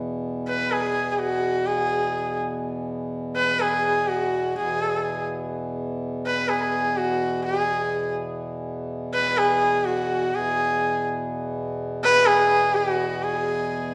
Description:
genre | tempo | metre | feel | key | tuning
indian classical, Hindustani | 124 BPM | 3/4 | straight | unclear | A4 = 442 Hz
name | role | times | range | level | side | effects
pedal harmonium | drone | 0.0-13.9 s | E2 to B2 | -32 LUFS | equal | none
clear sarangi | melody | 0.5-13.9 s | F#4 to B4 | -24 LUFS | equal | none
rich sarangi | second line | 0.6-13.9 s | F#4 to B4 | -35 LUFS | equal | none
room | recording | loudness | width
wet recital hall reverb, RT60 1.5 s | none | -24 LUFS | mono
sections
0.0-10.3 A section; 10.3-13.9 B section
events
none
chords
none

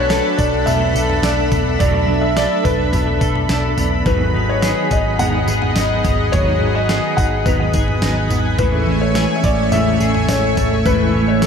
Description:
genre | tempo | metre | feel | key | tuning
dream pop | 106 BPM | 4/4 | straight | unclear | A4 = 441 Hz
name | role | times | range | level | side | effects
felt-muted upright piano | melody | 0.0-11.5 s | A4 to F#5 | -21 LUFS | left 2 dB | ping-pong delay
semi-hollow electric guitar | accompaniment | 0.0-11.5 s | G#2 to A4 | -25 LUFS | right 3 dB | tremolo, ensemble chorus
lush unison pad | sustained chords | 0.0-11.5 s | A3 to C#6 | -20 LUFS | equal | chorus
electric guitar at the edge of break-up | arpeggios | 0.0-11.5 s | E3 to A4 | -23 LUFS | left 4 dB | lush chorus, ping-pong delay
vintage muted picked electric bass | bass | 0.0-11.5 s | G#1 to B1 | -21 LUFS | equal | none
detuned 8-bit digital drum machine | drums | 0.1-11.5 s | kick drum, snare drum, tambourine, toms | -21 LUFS | right 1 dB | none
twinkling granular texture | texture | 0.1-8.8 s | E5 to G#5 | -35 LUFS | equal | none
room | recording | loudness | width
wet plate reverb, RT60 2.0 s, digital ambience | dreamy mix soaked in reverb | -14 LUFS | side -6 dB against mid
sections
0.0-11.5 A section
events
none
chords
0.0 Bm7; 4.1 G#m7; 8.6 Amaj7

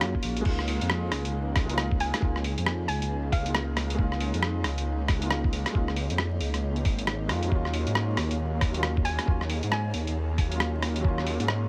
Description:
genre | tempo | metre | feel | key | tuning
future garage | 136 BPM | 4/4 | swing 61% on 16ths | unclear | A4 = 444 Hz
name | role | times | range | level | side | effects
felt-muted upright piano | accompaniment | 0.0-11.7 s | Gb3 to F4 | -36 LUFS | equal | sidechain pumping, delay
granular cloud pad | sustained chords | 0.0-11.7 s | Bb3 to F5 | -40 LUFS | equal | built-in reverb, vintage 12-bit sampler grit, sidechain pumping
swelling detuned saw bass | bass | 0.0-11.7 s | Ab1 to Ab2 | -32 LUFS | equal | tube saturation, sidechain pumping
lo-fi sampler-style drum kit | drums | 0.0-11.6 s | crash cymbal, hi-hat, rim click | -33 LUFS | equal | none
electronic kick drum | drums | 0.1-11.2 s | none | -28 LUFS | equal | none
hollow square pluck | melody | 2.0-4.0, 9.0-10.1 s | F5 to Ab5 | -38 LUFS | equal | chorus, tape echo
room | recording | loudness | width
light reverb | vinyl crackle | -28 LUFS | mono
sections
0.5-11.7 A section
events
none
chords
0.5 Db6; 7.5 Ebm7

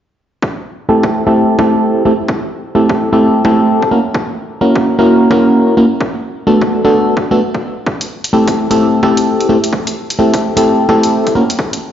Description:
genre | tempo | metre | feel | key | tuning
UK garage, two-step garage | 129 BPM | 4/4 | swing 62% on 16ths | A dorian | A4 = 439 Hz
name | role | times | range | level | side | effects
electronic kick drum | drums | 0.4-11.7 s | none | -19 LUFS | equal | high-pass filter on kick, high-pass filter on room
FM electric piano | stabs | 0.9-11.4 s | A3 to A#4 | -10 LUFS | equal | chorus, phaser, low-pass filter, tape echo
electronic hi-hat | drums | 8.0-11.8 s | none | -22 LUFS | equal | none
room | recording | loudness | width
moderate lush hall reverb, RT60 2.0 s | played on a big sound system in a bare room, large studio reverb, nothing above 7.5 kHz | -10 LUFS | side -10 dB against mid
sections
0.4-11.9 A section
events
filter sweep on FM electric piano 0.4-11.9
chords
0.4 Am7; 3.9 F#7; 6.0 Bm7; 7.9 Am7; 11.4 N.C.

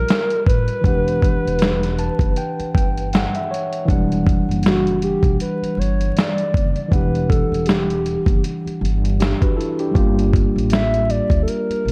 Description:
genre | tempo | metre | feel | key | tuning
lo-fi hip hop | 79 BPM | 4/4 | swing 59% on 16ths | unclear | A4 = 439 Hz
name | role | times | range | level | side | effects
hollow clarinet-like synth lead | melody | 0.0-11.9 s | F#4 to E5 | -25 LUFS | equal | chorus, low-pass filter, tape echo
tine electric piano | accompaniment | 0.0-11.9 s | E3 to A5 | -25 LUFS | equal | cassette tape, low-pass filter
dusty soul sampler-style drum kit | drums | 0.1-11.9 s | hi-hat, kick drum, snare drum | -21 LUFS | equal | vintage 12-bit sampler grit
upright bass | bass | 0.5-11.9 s | E1 to D2 | -24 LUFS | equal | none
room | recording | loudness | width
digital ambience | dark, warm production, vinyl crackle | -19 LUFS | mono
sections
0.0-3.9 A section; 3.9-11.9 A section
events
tine electric piano fill 1.6-3.9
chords
0.0 Gm9; 0.8 Em9; 10.0 Gm9

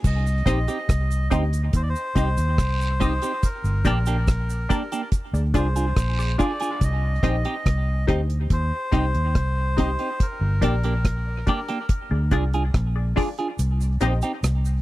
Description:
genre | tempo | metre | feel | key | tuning
dub reggae | 71 BPM | 4/4 | straight | C minor | A4 = 440 Hz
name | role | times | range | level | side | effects
vintage muted fingered electric bass | bass | 0.0-14.8 s | G1 to Eb2 | -22 LUFS | equal | none
deep reggae drum kit | drums | 0.0-14.6 s | crash cymbal, hi-hat, kick drum, rim click | -22 LUFS | equal | none
cabasa and guiro | percussion | 0.0-7.0, 13.6-14.8 s | none | -40 LUFS | right 6 dB | dub echo
melodica | melody | 0.1-11.9 s | Bb4 to Eb5 | -30 LUFS | equal | dub echo
semi-hollow electric guitar | accompaniment | 0.5-14.3 s | Bb3 to Ab4 | -28 LUFS | right 2 dB | phaser, dub echo
filtered dub chord stab | stabs | 0.5-14.2 s | D4 to Eb5 | -31 LUFS | left 4 dB | phaser, dub echo
room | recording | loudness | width
small room ambience | dry, close 1970s-style studio recording | -20 LUFS | side -17 dB against mid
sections
0.0-14.8 A section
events
part muted 6.8-13.6; kick muted 13.6-14.8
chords
0.0 Cm; 3.4 Gm; 5.1 Ddim; 6.8 Cm; 10.2 Gm; 11.9 Ddim; 13.6 Cm

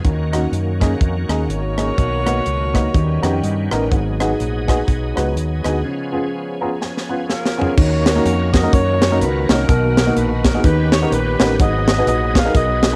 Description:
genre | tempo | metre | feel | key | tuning
uptempo gospel | 125 BPM | 4/4 | swing 59% on 8ths | unclear | A4 = 440 Hz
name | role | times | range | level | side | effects
warm upright piano | accompaniment | 0.0-13.0 s | G#2 to A#5 | -23 LUFS | equal | cassette tape
bright tonewheel organ | sustained chords | 0.0-13.0 s | D#3 to G#4 | -29 LUFS | equal | slow rotary speaker, overdrive, chorus vibrato, cassette tape
dark French horn section | sustained chords | 0.0-7.8 s | E#3 to A#4 | -35 LUFS | equal | none
fingered electric bass | bass | 0.0-13.0 s | G#1 to G2 | -23 LUFS | equal | tube saturation
tight funk drum kit | drums | 0.0-12.9 s | crash cymbal, hi-hat, kick drum, rim click, snare drum, toms | -20 LUFS | equal | cassette tape
clear saxophone section | melody | 1.5-3.7, 7.3-13.0 s | D#4 to E#5 | -24 LUFS | equal | cassette tape
room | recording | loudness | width
small room ambience | home recording on cassette | -17 LUFS | mono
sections
0.0-7.8 A section; 7.8-13.0 B section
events
upright piano fill 2.9-3.9, 6.3-7.8; break 5.8-7.8; drum fill 6.8-7.8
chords
0.0 D#m7; 2.0 Bmaj7; 2.9 D#7b13; 3.9 G#m7; 5.8 C#7; 7.8 D#m7; 9.7 Bmaj7; 10.6 D#7b13; 11.6 G#m7

